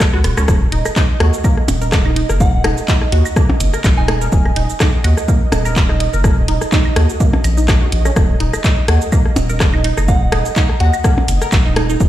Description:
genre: minimal techno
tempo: 125 BPM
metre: 4/4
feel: swing 55% on 16ths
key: Eb minor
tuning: A4 = 440 Hz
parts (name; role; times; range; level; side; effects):
- electronic kick drum; drums; 0.0-12.1 s; none; -15 LUFS; equal; none
- garage drum kit; drums; 0.0-12.1 s; handclaps, hi-hat, rim click, shaker; -23 LUFS; right 1 dB; none
- electronic rim click, claves and percussion blips; percussion; 0.0-11.9 s; none; -22 LUFS; left 2 dB; overdrive, tape echo
- resonant blip pluck; riff; 0.1-11.9 s; Bb3 to Bb4; -24 LUFS; right 2 dB; phaser, sidechain pumping, tape echo
- saturated sub bass; bass; 0.1-12.1 s; Eb1 to Eb2; -16 LUFS; equal; sidechain pumping
- pulsing gated texture; texture; 1.1-12.1 s; Eb5; -28 LUFS; right 8 dB; chorus, built-in reverb, sidechain pumping
- soft synth bell; melody; 2.4-4.6, 10.1-11.3 s; Gb5 to Ab5; -25 LUFS; left 2 dB; chorus, tape echo
room: light reverb, digital ambience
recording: played on a big sound system in a bare room, stone room reverb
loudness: -12 LUFS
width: side -13 dB against mid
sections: 0.0-12.1 A section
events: drum fill 0.1-0.5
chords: 0.0 Eb5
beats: 0.00 | 0.48 0.96 1.44 1.92 | 2.40 2.88 3.36 3.84 | 4.32 4.80 5.28 5.76 | 6.24 6.72 7.20 7.68 | 8.16 8.64 9.12 9.60 | 10.08 10.56 11.04 11.52 | 12.00

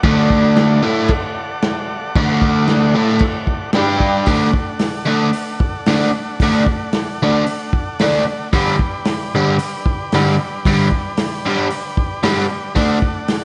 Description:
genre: garage rock duo or trio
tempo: 113 BPM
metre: 4/4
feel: straight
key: D major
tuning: A4 = 443 Hz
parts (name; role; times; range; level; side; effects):
- combo organ; sustained chords; 0.0-13.4 s; G4 to A5; -28 LUFS; equal; none
- biting overdriven guitar; riff; 0.0-13.0 s; G2 to A4; -18 LUFS; equal; none
- vintage drum kit; drums; 0.0-13.4 s; crash cymbal, hi-hat, kick drum, snare drum; -22 LUFS; equal; none
room: moderate scoring stage reverb, RT60 1.8 s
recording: nothing above 10.8 kHz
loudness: -17 LUFS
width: mono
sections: 0.0-4.3 A section; 4.3-13.4 B section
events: transistor combo organ fill 2.7-4.3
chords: 0.0 D; 3.8 G5; 4.3 D; 8.5 G; 12.8 D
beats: | 0.06 0.58 1.11 1.64 | 2.17 2.69 3.22 3.75 | 4.29 4.82 5.35 5.88 | 6.41 6.95 7.48 8.01 | 8.54 9.07 9.60 10.13 | 10.66 11.19 11.72 12.24 | 12.77 13.30

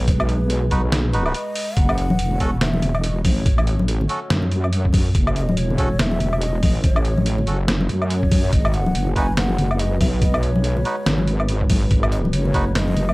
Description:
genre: deep dubstep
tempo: 142 BPM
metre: 4/4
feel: swing 58% on 16ths, half-time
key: F# dorian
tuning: A4 = 439 Hz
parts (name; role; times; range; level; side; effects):
- breathy mellow ney; melody; 0.0-13.1 s; B4 to G#5; -30 LUFS; equal; dub echo
- deep dark ambient pad; sustained chords; 0.0-13.1 s; G#3 to C#5; -32 LUFS; equal; chorus, built-in reverb
- wobble bass; bass; 0.0-13.1 s; E1 to F#2; -20 LUFS; equal; chorus
- electronic kick drum; drums; 0.1-12.6 s; none; -20 LUFS; equal; none
- trip hop sampler-style drum kit; drums; 0.1-13.1 s; hi-hat, snare drum, woodblock; -25 LUFS; equal; none
- melodica; stabs; 0.7-12.6 s; C#4 to B4; -29 LUFS; right 1 dB; dub echo
- congas; percussion; 2.1-13.1 s; none; -24 LUFS; left 1 dB; none
room: digital ambience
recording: dry, gritty hardware recording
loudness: -17 LUFS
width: side -22 dB against mid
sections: 0.0-13.1 A section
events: break 1.3-1.8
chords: 0.0 G#m7; 1.8 F#m; 8.5 G#m7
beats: | 0.08 0.50 0.92 1.34 | 1.77 2.19 2.61 3.04 | 3.46 3.88 4.30 4.73 | 5.15 5.57 5.99 6.42 | 6.84 7.26 7.68 8.11 | 8.53 8.95 9.37 9.80 | 10.22 10.64 11.06 11.49 | 11.91 12.33 12.75

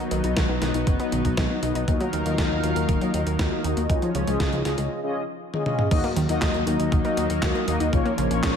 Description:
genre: italo disco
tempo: 119 BPM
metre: 4/4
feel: straight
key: Eb minor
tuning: A4 = 439 Hz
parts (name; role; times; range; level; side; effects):
- lush unison pad; sustained chords; 0.0-8.6 s; Eb3 to F5; -28 LUFS; left 2 dB; chorus
- analog pluck; arpeggios; 0.0-8.5 s; Db3 to D#4; -31 LUFS; right 2 dB; chorus, tape echo
- mellow synth brass; stabs; 0.0-8.6 s; Bb3 to D#5; -28 LUFS; left 2 dB; chorus, tape echo
- fat analog bass; bass; 0.1-8.5 s; Eb1 to Eb2; -28 LUFS; equal; none
- clean 12-bit digital drum machine; drums; 0.1-8.5 s; crash cymbal, handclaps, hi-hat, snare drum, toms; -29 LUFS; equal; gated reverb
- electronic kick drum; drums; 0.4-8.5 s; none; -25 LUFS; equal; none
room: light reverb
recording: none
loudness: -21 LUFS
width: side -7 dB against mid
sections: 0.0-5.9 A section; 5.9-8.6 B section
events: filter sweep on synth arpeggio sound 0.0-5.9; filter sweep on analog polysynth 0.0-5.9; break 4.9-5.9; drum fill 5.5-5.9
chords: 0.0 B; 1.9 Ebmadd9; 3.9 Dbadd9; 5.9 Ebm; 7.9 Bbm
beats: 0.37 0.87 1.38 | 1.88 2.38 2.89 3.39 | 3.90 4.40 4.91 5.41 | 5.91 6.42 6.92 7.43 | 7.93 8.43

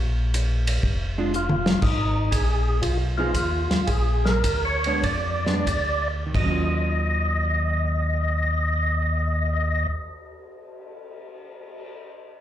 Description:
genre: soul jazz organ trio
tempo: 85-122 BPM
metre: 4/4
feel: swing 68% on 8ths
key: unclear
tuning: A4 = 441 Hz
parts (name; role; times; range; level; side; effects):
- mellow tonewheel organ; bass; 0.0-9.9 s; F1 to F2; -24 LUFS; equal; slow rotary speaker
- warm soul drum kit; drums; 0.3-11.9 s; crash cymbal, cymbal swell, hi-hat, kick drum, ride cymbal, snare drum, toms; -28 LUFS; equal; none
- archtop guitar, miked and amplified; accompaniment; 1.2-10.1 s; Eb3 to Ab4; -30 LUFS; right 3 dB; slapback echo
- percussive tonewheel organ; melody; 1.4-9.9 s; Eb4 to Eb5; -26 LUFS; equal; overdrive, chorus vibrato, slow rotary speaker, slapback echo
room: light reverb, small room ambience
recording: live gig heard through the venue's PA, club reverb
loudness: -21 LUFS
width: side -11 dB against mid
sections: 0.0-1.8 A section; 1.8-6.3 B section; 6.3-12.0 C section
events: drum fill 1.3-1.8; slowing down 1.8-6.3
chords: 0.0 Bb5; 1.8 Fm7b5; 3.9 Bb7b9; 6.3 Ebm9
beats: 0.33 0.83 1.32 | 1.81 2.31 2.82 3.34 | 3.88 4.44 5.03 5.66 | 6.34 7.05 7.76 8.47 | 9.17 9.88 10.59 11.30

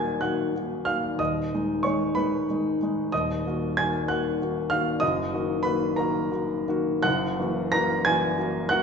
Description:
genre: classical, romantic character piece for solo piano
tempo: 53-64 BPM (dotted quarters)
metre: 6/8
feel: rubato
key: Eb minor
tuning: A4 = 440 Hz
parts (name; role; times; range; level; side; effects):
- warm grand piano; solo; 0.0-8.8 s; Eb1 to Bb6; -23 LUFS; equal; none
room: wet recital hall reverb, RT60 1.5 s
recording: recorded in a church or concert hall, nothing above 7.8 kHz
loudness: -23 LUFS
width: side -6 dB against mid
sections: 0.0-8.8 A section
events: none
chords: 0.0 Ebm; 1.2 Abm/Eb; 3.1 Ebm; 5.0 Ebm/Gb; 7.1 Gb7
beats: 0.22 | 1.20 2.16 | 3.12 4.08 | 5.02 5.97 | 7.05 8.06

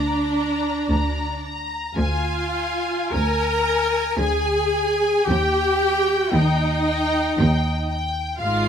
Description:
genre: classical, slow romantic movement for string orchestra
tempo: 49-59 BPM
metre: 3/4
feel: rubato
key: Eb major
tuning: A4 = 440 Hz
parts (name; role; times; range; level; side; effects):
- warm symphonic violin section; melody; 0.0-8.7 s; F5 to Bb5; -28 LUFS; left 3 dB; none
- clear symphonic violin section; second line; 0.0-8.7 s; D5 to Bb5; -28 LUFS; right 1 dB; none
- clear studio viola section; accompaniment; 0.0-8.7 s; D4 to Bb4; -22 LUFS; equal; none
- clear symphonic cello section; bass; 0.0-8.7 s; D2 to Ab2; -26 LUFS; right 1 dB; none
- rich symphonic double bass section; bass; 0.0-8.7 s; Ab1 to Eb2; -26 LUFS; right 1 dB; none
room: light reverb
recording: close, detailed microphones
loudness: -19 LUFS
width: side -8 dB against mid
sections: 0.0-8.7 A section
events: none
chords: 0.0 Bb/D; 2.0 Bb7/D; 5.3 Eb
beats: 0.92 | 1.98 3.14 4.21 | 5.29 6.35 7.39 | 8.41

